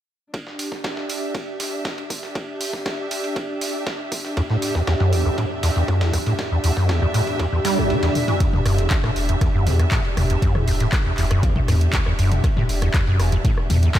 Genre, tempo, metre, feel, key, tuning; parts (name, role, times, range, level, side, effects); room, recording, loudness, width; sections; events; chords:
acid house; 119 BPM; 4/4; straight; E minor; A4 = 440 Hz
dusty soul sampler-style drum kit; drums; 0.3-14.0 s; hi-hat, ride cymbal, snare drum; -34 LUFS; right 1 dB; high-pass filter on cymbals, high-pass filter on snare, high-pass filter on hats, high-pass filter on room
electronic kick drum; drums; 0.3-14.0 s; -23 LUFS; equal; high-pass filter on kick
muted studio string section; texture; 0.3-14.0 s; D4 to E5; -27 LUFS; right 1 dB; sidechain pumping
punchy analog drum machine; drums; 0.6-14.0 s; handclaps, hi-hat, rim click, toms; -27 LUFS; equal
deep acid bass; riff; 4.4-14.0 s; E1 to G3; -20 LUFS; equal; overdrive, ensemble chorus, sidechain pumping, ping-pong delay
warm sub bass; bass; 8.7-13.9 s; E1 to E2; -22 LUFS; equal; sidechain pumping
moderate lush hall reverb, RT60 2.0 s; dreamy mix soaked in reverb; -18 LUFS; side -12 dB against mid
0.3-8.4 A section; 8.4-14.0 B section
kick drops out 7.9-8.4; drum fill 8.0-8.4
0.3 Em7